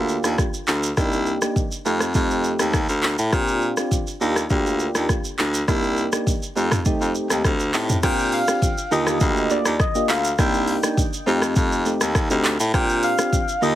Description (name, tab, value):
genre	afrobeats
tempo	102 BPM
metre	4/4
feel	straight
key	Bb major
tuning	A4 = 440 Hz
part	soft electric-piano-like synth keys	accompaniment	0.0-13.8 s	D3 to G4	-24 LUFS	right 1 dB	chorus
part	edgy baritone saxophone	bass	0.0-13.8 s	C2 to Bb2	-22 LUFS	equal	none
part	deep house drum kit	drums	0.1-13.8 s	crash cymbal, handclaps, hi-hat, kick drum, rim click, shaker, toms	-23 LUFS	equal	none
part	soft struck synth lead	melody	8.0-13.8 s	D5 to G5	-24 LUFS	left 1 dB	chorus, phaser, digital delay
room	light reverb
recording	heavily compressed radio sound, multiband compression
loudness	-18 LUFS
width	side -13 dB against mid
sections	0.0-8.0 A section; 8.0-13.8 B section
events	none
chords	0.0 Ebmaj7; 1.0 Cm7; 1.9 F7; 3.3 Bb6; 4.2 Ebmaj7; 5.7 Cm7; 6.6 F7; 8.0 Bb6; 8.9 Ebmaj7; 10.4 Cm7; 11.3 F7; 12.7 Bb6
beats	0.39 | 0.97 1.56 2.15 2.74 | 3.33 3.92 4.50 5.09 | 5.68 6.27 6.86 7.45 | 8.03 8.62 9.21 9.80 | 10.39 10.97 11.56 12.15 | 12.74 13.33